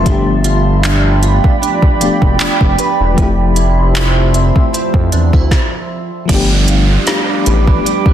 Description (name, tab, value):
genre	contemporary R&B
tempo	77 BPM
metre	4/4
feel	swing 54% on 16ths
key	unclear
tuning	A4 = 440 Hz
part	FM electric piano with tremolo	accompaniment	0.0-8.1 s	F3 to G4	-19 LUFS	left 7 dB	none
part	deep dark ambient pad	sustained chords	0.0-8.1 s	F3 to D6	-18 LUFS	right 2 dB	chorus, built-in reverb, sidechain pumping
part	direct-recorded clean electric guitar	arpeggios	0.0-8.1 s	F3 to B4	-21 LUFS	right 6 dB	ensemble chorus, tape echo
part	smooth synth bass	bass	0.0-7.8 s	E1 to F2	-13 LUFS	equal	none
part	smooth R&B drum kit	drums	0.1-8.1 s	crash cymbal, handclaps, hi-hat, kick drum, snare drum	-14 LUFS	equal	none
part	downlifter	sound effects	6.3-8.1 s	none	-21 LUFS	right 3 dB	none
room	light reverb, digital ambience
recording	dense, heavily limited modern master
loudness	-10 LUFS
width	side -10 dB against mid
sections	0.0-6.3 A section; 6.3-8.1 B section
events	stop 5.5-6.3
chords	0.1 G7; 3.2 Fmaj7; 6.3 G7